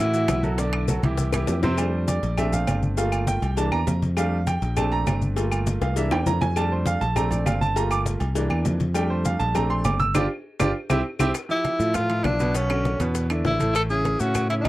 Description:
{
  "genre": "Afro-Cuban jazz",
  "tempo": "201 BPM",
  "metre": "4/4",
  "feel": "straight",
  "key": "F major",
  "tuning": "A4 = 440 Hz",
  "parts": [
    { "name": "breathy tenor saxophone", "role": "melody", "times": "0.0-0.6, 11.5-14.7 s", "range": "C#4 to A4", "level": "-25 LUFS", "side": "equal", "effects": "tape echo" },
    { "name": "bright upright piano", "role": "accompaniment", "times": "0.0-14.7 s", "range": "A2 to E6", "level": "-26 LUFS", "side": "right 2 dB", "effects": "none" },
    { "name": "picked electric bass", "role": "bass", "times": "0.0-14.7 s", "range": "G1 to A2", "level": "-25 LUFS", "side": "equal", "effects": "none" },
    { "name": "bongos and cowbell", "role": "percussion", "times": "0.1-14.7 s", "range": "none", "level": "-32 LUFS", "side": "left 7 dB", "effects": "none" },
    { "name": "congas", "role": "percussion", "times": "0.1-14.7 s", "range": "none", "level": "-28 LUFS", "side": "left 1 dB", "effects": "none" },
    { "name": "maracas", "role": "percussion", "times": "0.1-14.7 s", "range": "none", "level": "-39 LUFS", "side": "left 11 dB", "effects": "none" },
    { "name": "claves", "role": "percussion", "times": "0.3-14.7 s", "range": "none", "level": "-36 LUFS", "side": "left 4 dB", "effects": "none" },
    { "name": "timbales and agogo bells", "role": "percussion", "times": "0.3-14.7 s", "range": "none", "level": "-32 LUFS", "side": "right 4 dB", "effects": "none" }
  ],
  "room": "little or no reverb",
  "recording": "dry, close 1970s-style studio recording",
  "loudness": "-21 LUFS",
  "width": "side -16 dB against mid",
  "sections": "0.0-1.8 A section; 1.8-11.3 A section; 11.3-14.7 B section",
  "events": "tenor saxophone solo 0.0-1.8; drum fill 0.9-1.8, 5.8-6.6, 10.2-11.3; upright piano solo 1.8-11.3; band accent 10.2-11.3",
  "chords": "0.0 F#m7; 0.6 Bm7; 1.2 C; 1.8 F69; 2.4 Bbmaj7; 3.0 Gm7; 3.6 C7; 4.2 F69; 4.8 Bbmaj7; 5.4 Gm7; 6.0 C7; 6.6 F69; 7.2 Bbmaj7; 8.4 C7; 9.0 F69; 9.6 Bbmaj7; 10.2 G5; 10.8 C; 11.3 Fmaj9; 12.6 Bmadd9; 13.2 E5; 13.8 Amaj7",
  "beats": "0.29 | 0.58 0.88 1.18 1.48 | 1.78 2.08 2.38 2.68 | 2.98 3.28 3.58 3.87 | 4.17 4.47 4.77 5.07 | 5.37 5.67 5.97 6.27 | 6.57 6.86 7.16 7.46 | 7.76 8.06 8.36 8.66 | 8.96 9.26 9.55 9.85 | 10.15 10.45 10.75 11.05 | 11.35 11.65 11.95 12.25 | 12.55 12.85 13.15 13.45 | 13.75 14.05 14.35 14.65"
}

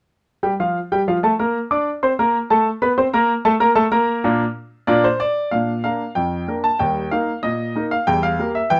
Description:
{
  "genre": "ragtime piano",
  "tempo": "94 BPM",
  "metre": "2/4",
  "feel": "straight",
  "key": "Bb major",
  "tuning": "A4 = 441 Hz",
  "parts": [
    { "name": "clear grand piano", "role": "solo", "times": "0.4-8.8 s", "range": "Eb2 to D6", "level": "-19 LUFS", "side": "equal", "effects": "none" }
  ],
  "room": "light reverb",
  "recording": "none",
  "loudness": "-19 LUFS",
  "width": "mono",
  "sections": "0.4-5.5 A section; 5.5-8.8 B section",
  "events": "none",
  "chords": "0.4 Bb; 6.8 Eb; 8.1 Edim",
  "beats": "| 0.43 1.07 | 1.71 2.34 | 2.98 3.61 | 4.25 4.89 | 5.53 6.17 | 6.81 7.44 | 8.08 8.71"
}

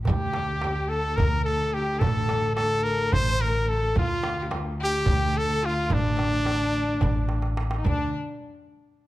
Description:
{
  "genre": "Turkish makam ensemble",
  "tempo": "216 BPM (eighths)",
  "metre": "7/8",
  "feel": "straight",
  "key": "D minor",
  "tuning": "A4 = 439 Hz",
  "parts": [
    { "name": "upright bass", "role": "bass", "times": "0.0-8.1 s", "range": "A1 to D2", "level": "-28 LUFS", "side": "equal", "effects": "none" },
    { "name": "rich cello", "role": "drone", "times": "0.0-7.9 s", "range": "D2", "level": "-35 LUFS", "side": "left 1 dB", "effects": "none" },
    { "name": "bright trumpet", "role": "melody", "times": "0.1-8.1 s", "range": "D4 to C5", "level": "-27 LUFS", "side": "equal", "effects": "none" },
    { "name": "rich violin", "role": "second line", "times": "0.1-8.1 s", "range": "D4 to C5", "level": "-32 LUFS", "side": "left 4 dB", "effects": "none" },
    { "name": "darbuka", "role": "percussion", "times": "0.1-8.1 s", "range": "none", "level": "-31 LUFS", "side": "right 3 dB", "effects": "none" },
    { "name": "frame drum", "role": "percussion", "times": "0.1-8.1 s", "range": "none", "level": "-30 LUFS", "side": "right 2 dB", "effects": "none" }
  ],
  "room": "light reverb",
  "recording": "close, detailed microphones",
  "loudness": "-22 LUFS",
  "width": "side -16 dB against mid",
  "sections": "0.0-7.9 A section; 7.9-9.1 B section",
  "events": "drum fill 7.3-7.9",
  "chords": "none",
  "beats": "| 0.07 0.35 0.63 0.91 1.19 1.46 1.74 | 2.02 2.30 2.58 2.85 3.13 3.41 3.69 | 3.97 4.24 4.52 4.80 5.08 5.36 5.63 | 5.91 6.19 6.47 6.75 7.02 7.30 7.58 | 7.86"
}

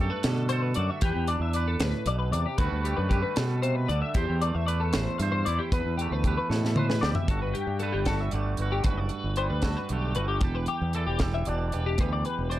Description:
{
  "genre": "math rock and midwest emo",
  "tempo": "77 BPM (dotted quarters)",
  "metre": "6/8",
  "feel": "straight",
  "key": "unclear",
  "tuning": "A4 = 444 Hz",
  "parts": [
    { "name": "twangy electric guitar", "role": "accompaniment", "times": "0.0-12.6 s", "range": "E2 to D5", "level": "-33 LUFS", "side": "right 6 dB", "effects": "none" },
    { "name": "twelve-string electric guitar", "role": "arpeggios", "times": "0.0-12.6 s", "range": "G4 to E5", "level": "-32 LUFS", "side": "left 6 dB", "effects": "ensemble chorus" },
    { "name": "growling fingered electric bass", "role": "bass", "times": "0.0-12.6 s", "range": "E1 to B2", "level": "-28 LUFS", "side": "equal", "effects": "overdrive" },
    { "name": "crisp fusion drum kit", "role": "drums", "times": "0.2-12.6 s", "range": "hi-hat, kick drum, snare drum, toms", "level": "-29 LUFS", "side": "equal", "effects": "none" }
  ],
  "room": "little or no reverb",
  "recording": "dark, warm production",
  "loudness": "-25 LUFS",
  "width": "side -14 dB against mid",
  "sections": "0.0-7.3 A section; 7.3-12.6 B section",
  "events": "drum fill 6.5-7.3",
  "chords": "0.0 Gmaj9; 1.0 Em7; 2.6 Gmaj9/D; 4.2 C69/E; 5.7 Em7; 7.3 Gmaj9; 10.4 Em7",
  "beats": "0.24 | 1.02 1.81 | 2.59 3.37 | 4.15 4.93 | 5.72 6.50 | 7.28 8.06 | 8.85 9.63 | 10.42 11.20 | 11.98"
}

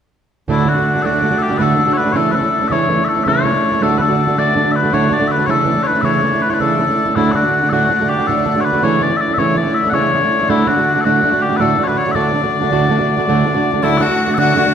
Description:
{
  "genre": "celtic folk, Celtic slip jig",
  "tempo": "108 BPM (dotted quarters)",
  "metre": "9/8",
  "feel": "straight",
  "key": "D major",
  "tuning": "A4 = 439 Hz",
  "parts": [
    { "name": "mellow small bagpipes", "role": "melody", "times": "0.5-14.7 s", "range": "E4 to F#5", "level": "-16 LUFS", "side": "left 4 dB", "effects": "none" },
    { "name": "fingerpicked plugged-in swing-style acoustic guitar", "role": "accompaniment", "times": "0.5-14.7 s", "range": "D2 to F#4", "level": "-16 LUFS", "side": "right 3 dB", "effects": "none" },
    { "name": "accordion", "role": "drone", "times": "0.5-14.7 s", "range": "D3 to D4", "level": "-25 LUFS", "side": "right 1 dB", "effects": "none" },
    { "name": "clear fiddle", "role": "second line", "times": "13.8-14.7 s", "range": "E4 to F#4", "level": "-18 LUFS", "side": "left 6 dB", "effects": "none" }
  ],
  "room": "wet recital hall reverb, RT60 1.6 s",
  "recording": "minimal, uncompressed stereo recording",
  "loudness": "-13 LUFS",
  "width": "side -8 dB against mid",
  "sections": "0.5-13.8 A section",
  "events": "none",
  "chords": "0.5 D; 2.1 A/C#; 3.8 D; 5.5 A/C#; 7.2 D; 8.8 A/C#; 10.5 D",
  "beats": "| 0.48 1.04 1.59 | 2.15 2.71 3.26 | 3.82 4.37 4.93 | 5.49 6.04 6.60 | 7.16 7.71 8.27 | 8.82 9.38 9.94 | 10.49 11.05 11.60 | 12.16 12.71 13.27 | 13.83 14.38"
}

